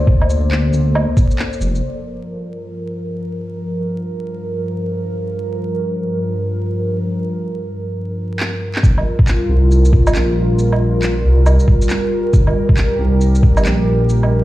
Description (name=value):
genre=future garage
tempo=137 BPM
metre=4/4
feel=swing 63% on 16ths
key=G minor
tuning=A4 = 441 Hz
part: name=warbly tape-like pad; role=sustained chords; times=0.0-14.4 s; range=G2 to D5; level=-20 LUFS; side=equal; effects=chorus, built-in reverb, vintage 12-bit sampler grit, sidechain pumping
part: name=dark detuned saw bass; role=bass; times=0.0-1.8, 8.8-14.4 s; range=F1 to D2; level=-14 LUFS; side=equal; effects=sidechain pumping
part: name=electronic kick drum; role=drums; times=0.1-1.3, 8.8-13.5 s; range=none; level=-12 LUFS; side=equal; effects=vintage 12-bit sampler grit
part: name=electronic woodblock, shaker and handclaps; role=drums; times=0.2-1.8, 8.4-14.3 s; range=none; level=-23 LUFS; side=right 1 dB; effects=overdrive, low-pass filter on perc, vintage 12-bit sampler grit, low-pass filter on snare
room=light reverb, digital ambience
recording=played on a big sound system in a bare room, large studio reverb, vinyl crackle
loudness=-14 LUFS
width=side -16 dB against mid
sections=0.0-1.8 A section; 1.8-8.8 B section; 8.8-14.4 C section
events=drum fill 8.4-8.8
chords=0.0 Bbmaj9; 1.8 Gm7